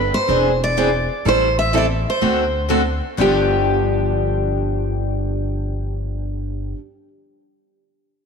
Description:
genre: acoustic string swing (jazz manouche).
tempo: 124 BPM.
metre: 4/4.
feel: swing 64% on 8ths.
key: G mixolydian.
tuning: A4 = 440 Hz.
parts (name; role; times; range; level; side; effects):
picked steel-string acoustic guitar; melody; 0.0-6.8 s; G4 to E5; -20 LUFS; right 1 dB; tape echo.
upright bass; bass; 0.0-6.7 s; E1 to D2; -22 LUFS; left 1 dB; none.
picked steel-string acoustic guitar; accompaniment; 0.3-6.8 s; G2 to A4; -24 LUFS; left 12 dB; none.
picked steel-string acoustic guitar; accompaniment; 0.3-6.8 s; G2 to B#4; -25 LUFS; right 11 dB; none.
room: moderate plate reverb, RT60 2.5 s.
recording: 1960s-style stereo with parts hard left and right.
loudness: -17 LUFS.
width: side -5 dB against mid.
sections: 0.0-3.2 A section; 3.2-7.1 B section.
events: none.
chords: 0.3 Eaug7; 1.3 Am7; 2.2 D7; 3.2 G7.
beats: 0.29 0.77 | 1.25 1.74 2.22 2.70 | 3.19 3.67 4.15 4.64 | 5.12 5.60 6.08 6.57.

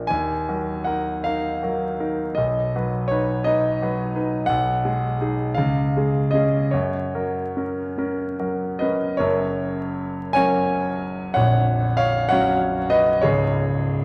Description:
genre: classical, romantic nocturne for solo piano.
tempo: 47-65 BPM (dotted quarters).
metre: 12/8.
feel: rubato.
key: F# major from 4.5 s.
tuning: A4 = 440 Hz.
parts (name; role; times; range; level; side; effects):
bright concert grand piano; solo; 0.0-14.0 s; A#0 to Ab5; -22 LUFS; equal; none.
room: moderate recital hall reverb, RT60 1.9 s.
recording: worn, warbling old tape, cassette tape, vinyl crackle, warbly pitch drift.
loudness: -22 LUFS.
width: mono.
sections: 0.0-9.2 A section; 9.2-14.0 B section.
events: none.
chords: 0.1 Ebm; 2.4 B; 4.5 G#m/B; 5.6 C#; 6.7 F#; 11.4 F#/A#; 13.2 C#5.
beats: | 0.10 1.26 2.38 3.47 | 4.50 5.56 6.73 7.97 | 9.20 10.36 11.36 12.31 | 13.25.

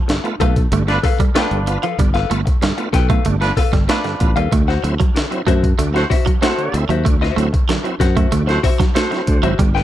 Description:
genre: funk.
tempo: 95 BPM.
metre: 4/4.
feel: straight.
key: unclear.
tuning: A4 = 440 Hz.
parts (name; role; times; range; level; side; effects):
clean electric guitar; riff; 0.0-9.7 s; F3 to A3; -24 LUFS; right 8 dB; spring reverb.
clean electric guitar; accompaniment; 0.1-9.8 s; F#4 to G5; -23 LUFS; left 10 dB; tube saturation.
bright tonewheel organ; stabs; 0.1-9.8 s; G2 to F4; -24 LUFS; right 2 dB; overdrive, chorus vibrato, fast rotary speaker.
breakbeat sampler-style drum kit; drums; 0.1-9.8 s; hi-hat, kick drum, snare drum; -17 LUFS; equal; none.
fingered electric bass; bass; 0.4-9.8 s; G1 to F#2; -19 LUFS; equal; none.
warm horn section; second line; 0.9-9.4 s; F3 to C5; -21 LUFS; right 1 dB; tube saturation.
room: little or no reverb.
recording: dark, warm production.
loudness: -14 LUFS.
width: side -13 dB against mid.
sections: 0.0-9.8 A section.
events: none.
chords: 0.0 G9; 4.5 D9.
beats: 0.09 0.72 1.35 | 1.99 2.62 3.25 3.89 | 4.52 5.16 5.79 6.42 | 7.06 7.69 8.32 8.96 | 9.59.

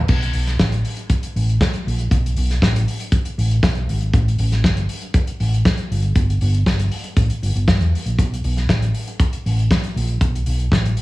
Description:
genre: disco.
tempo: 119 BPM.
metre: 4/4.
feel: straight.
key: unclear.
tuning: A4 = 440 Hz.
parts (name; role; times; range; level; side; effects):
hollow-body short-scale fingered electric bass; bass; 0.0-10.9 s; G1 to G2; -18 LUFS; equal; none.
warm soul drum kit; drums; 0.1-11.0 s; crash cymbal, hi-hat, kick drum, snare drum; -19 LUFS; equal; none.
room: light reverb, small room reverb.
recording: studio reverb.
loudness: -16 LUFS.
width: side -19 dB against mid.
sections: 0.1-11.0 A section.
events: none.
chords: none.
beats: | 0.09 0.60 1.10 1.61 | 2.11 2.62 3.12 3.63 | 4.14 4.64 5.15 5.65 | 6.16 6.66 7.17 7.68 | 8.18 8.69 9.19 9.70 | 10.20 10.71.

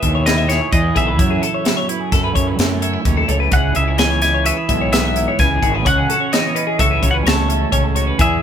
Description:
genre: math rock and midwest emo.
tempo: 128 BPM.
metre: 5/4.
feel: straight.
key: A lydian.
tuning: A4 = 440 Hz.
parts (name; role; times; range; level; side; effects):
twelve-string electric guitar; melody; 0.0-8.4 s; C#5 to A5; -20 LUFS; left 1 dB; none.
twelve-string electric guitar; accompaniment; 0.0-8.4 s; F#2 to A4; -23 LUFS; right 8 dB; none.
twelve-string electric guitar; arpeggios; 0.0-8.4 s; G#4 to E5; -22 LUFS; left 5 dB; none.
fuzz fingered electric bass; bass; 0.0-8.4 s; G#1 to F#2; -19 LUFS; equal; overdrive.
crisp fusion drum kit; drums; 0.0-8.3 s; hi-hat, kick drum, snare drum; -19 LUFS; equal; none.
room: light reverb.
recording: band playing live in one room.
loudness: -14 LUFS.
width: side -8 dB against mid.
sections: 0.0-8.4 A section.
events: none.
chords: 0.0 Emaj7; 1.2 F#m7; 3.5 C#m7; 5.9 A6/C#.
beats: 0.26 0.73 | 1.19 1.66 2.13 2.59 3.06 | 3.53 3.99 4.46 4.93 5.39 | 5.86 6.33 6.80 7.26 7.73 | 8.20.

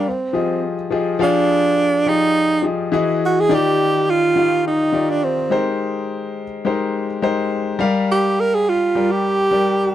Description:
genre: soul.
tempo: 104 BPM.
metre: 4/4.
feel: straight.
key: F dorian.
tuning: A4 = 440 Hz.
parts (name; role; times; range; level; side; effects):
breathy tenor saxophone; melody; 0.0-9.9 s; C4 to Bb4; -16 LUFS; right 3 dB; none.
clear grand piano; accompaniment; 0.0-9.9 s; Eb3 to G5; -20 LUFS; left 4 dB; none.
room: little or no reverb.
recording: dry, close 1970s-style studio recording.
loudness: -16 LUFS.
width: side -12 dB against mid.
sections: 0.0-1.2 A section; 1.2-9.9 A section.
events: none.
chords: 0.1 Fm7; 2.9 Emaj7; 3.5 Ebmaj7; 5.5 Abmaj9; 7.8 Gm7.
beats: 0.06 0.63 | 1.21 1.78 2.35 2.93 | 3.50 4.08 4.65 5.22 | 5.80 6.37 6.95 7.52 | 8.09 8.66 9.24 9.81.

